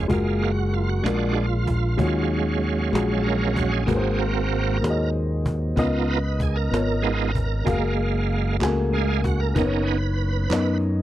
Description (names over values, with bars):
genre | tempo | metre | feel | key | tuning
slow gospel | 63 BPM (dotted quarters) | 6/8 | straight | F# major | A4 = 441 Hz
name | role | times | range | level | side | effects
dark upright piano | accompaniment | 0.0-11.0 s | G#2 to G#5 | -25 LUFS | left 3 dB | none
bright tonewheel organ | sustained chords | 0.0-10.8 s | F#3 to E#5 | -26 LUFS | right 7 dB | slow rotary speaker, chorus vibrato
modern bright fingered electric bass | bass | 0.0-11.0 s | F#1 to F#2 | -24 LUFS | equal | none
cajon | drums | 0.1-10.9 s | none | -27 LUFS | equal | none
group handclap | percussion | 8.6-10.8 s | none | -36 LUFS | right 7 dB | none
room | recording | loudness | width
little or no reverb | dry, close 1970s-style studio recording | -20 LUFS | side -13 dB against mid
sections
0.1-11.0 A section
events
tonewheel organ solo 0.1-11.0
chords
0.1 F#maj9; 1.0 A#7; 2.0 D#m11; 3.9 G#9; 5.8 C#13; 7.7 F#maj9; 9.6 Bmaj9/F#